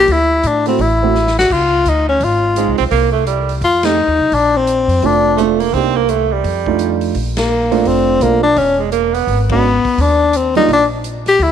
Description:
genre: jazz, small-group swing and bop.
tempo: 170 BPM.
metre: 4/4.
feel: swing 62% on 8ths.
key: Bb major.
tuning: A4 = 440 Hz.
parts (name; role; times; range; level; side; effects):
clear tenor saxophone; melody; 0.0-11.5 s; Bb3 to G4; -13 LUFS; left 3 dB; none.
dark grand piano; accompaniment; 0.0-10.7 s; G3 to G4; -18 LUFS; right 13 dB; none.
upright bass; bass; 0.0-11.5 s; E1 to A2; -19 LUFS; equal; none.
swinging big-band drum kit; drums; 0.1-11.5 s; crash cymbal, hi-hat, kick drum, ride cymbal, snare drum; -28 LUFS; equal; none.
breathy tenor saxophone; second line; 2.6-9.4 s; G3 to C4; -17 LUFS; right 10 dB; none.
room: light reverb, small room ambience.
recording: 1960s-style stereo.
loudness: -12 LUFS.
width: side -8 dB against mid.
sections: 0.0-7.2 A section; 7.2-11.5 A section.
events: drum fill 1.1-1.5; band accent 3.8, 7.3, 9.5.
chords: 0.1 D9; 1.5 Dbmaj9; 2.9 Am7/C (rootless); 3.6 F9; 4.3 Bbmaj9; 5.7 Cm7; 6.4 F13; 7.2 Bbmaj9; 8.6 E; 10.0 Ebmaj7(no3).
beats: | 0.08 0.43 0.79 1.14 | 1.50 1.85 2.21 2.56 | 2.91 3.27 3.62 3.97 | 4.33 4.68 5.03 5.39 | 5.74 6.09 6.45 6.80 | 7.16 7.51 7.86 8.22 | 8.57 8.92 9.28 9.63 | 9.98 10.34 10.69 11.04 | 11.40.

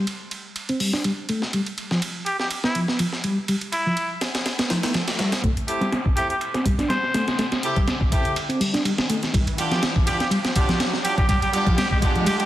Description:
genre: breakbeat, breaks.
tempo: 123 BPM.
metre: 4/4.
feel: swing 54% on 16ths.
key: A minor.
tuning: A4 = 441 Hz.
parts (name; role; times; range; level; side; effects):
mellow reed electric piano; riff; 0.0-12.3 s; F3 to D4; -26 LUFS; equal; fast tremolo, low-pass filter.
breakbeat sampler-style drum kit; drums; 0.1-12.5 s; hi-hat, kick drum, ride cymbal, snare drum; -24 LUFS; equal; high-pass filter on cymbals, low-pass filter on cymbals, studio reverb, high-pass filter on hats, low-pass filter on hats, high-pass filter on snare, low-pass filter on snare, high-pass filter on kick, low-pass filter on kick.
trumpet with straight mute; melody; 2.3-12.5 s; E4 to C5; -27 LUFS; equal; old record sound, dub echo.
swell and riser; sound effects; 4.7-12.5 s; none; -31 LUFS; equal; none.
electronic hi-hat; drums; 5.4-12.5 s; none; -36 LUFS; left 1 dB; high-pass filter on hats, studio reverb.
bright horn section; stabs; 5.7-12.5 s; A3 to G4; -26 LUFS; right 1 dB; low-pass filter, dub echo.
room: moderate lush hall reverb, RT60 1.6 s, digital ambience.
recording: dense, heavily limited modern master, vinyl crackle.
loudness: -20 LUFS.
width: side -14 dB against mid.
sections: 0.0-5.4 A section; 5.4-12.5 B section.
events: swell 4.7-5.4, 12.3; build-up 5.4-12.5; riser 5.4-12.5; filter sweep on drum 5.4-12.5; filter sweep on reed electric piano 5.4-12.5.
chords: 0.0 Am7; 1.5 G7; 5.4 Am7; 9.3 G7.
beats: 0.07 0.56 1.05 | 1.53 2.02 2.51 3.00 | 3.49 3.97 4.46 4.95 | 5.44 5.92 6.41 6.90 | 7.39 7.88 8.36 8.85 | 9.34 9.83 10.31 10.80 | 11.29 11.78 12.27.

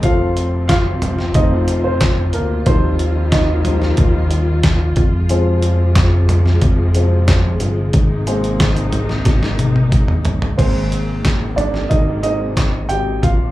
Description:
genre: piano-driven pop.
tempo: 91 BPM.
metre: 4/4.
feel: straight.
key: unclear.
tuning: A4 = 440 Hz.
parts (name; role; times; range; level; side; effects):
warm upright piano; accompaniment; 0.0-13.5 s; F3 to G5; -21 LUFS; equal; slapback echo.
warm studio string section; sustained chords; 0.0-13.5 s; C3 to F4; -23 LUFS; left 1 dB; none.
chorused synth bass; bass; 0.0-13.5 s; F1 to F2; -18 LUFS; equal; none.
boom bap sampler-style drum kit; drums; 0.0-13.4 s; crash cymbal, handclaps, hi-hat, kick drum, snare drum, toms; -16 LUFS; equal; overdrive.
room: light reverb.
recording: live gig heard through the venue's PA, club reverb.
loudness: -13 LUFS.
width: side -16 dB against mid.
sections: 0.0-10.6 A section; 10.6-13.5 B section.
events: upright piano solo 0.0-10.6, 10.6-13.5; drum fill 9.3-10.6.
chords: 0.0 F; 2.7 Ebadd9; 5.0 Fm; 7.9 Abadd9.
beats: | 0.03 0.69 1.35 2.01 | 2.67 3.33 3.99 4.64 | 5.30 5.96 6.62 7.28 | 7.94 8.60 9.27 9.93 | 10.59 11.25 11.91 12.57 | 13.23.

